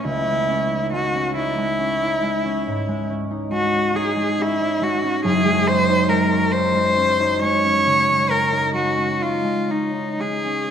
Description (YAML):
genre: classical, impressionist duo for cello and harp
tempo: 46 BPM (dotted quarters)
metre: 12/8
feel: rubato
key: C# minor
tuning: A4 = 438 Hz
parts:
  - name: rich cello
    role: melody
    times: 0.0-10.7 s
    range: Eb4 to Db5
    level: -20 LUFS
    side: left 1 dB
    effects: none
  - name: concert harp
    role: accompaniment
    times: 0.0-10.7 s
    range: Gb1 to D#4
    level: -22 LUFS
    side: right 1 dB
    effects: none
room: wet concert hall reverb, RT60 2.2 s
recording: none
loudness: -18 LUFS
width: side -8 dB against mid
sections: 0.0-10.7 A section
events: none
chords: 0.1 C#m9; 5.3 Gbsus2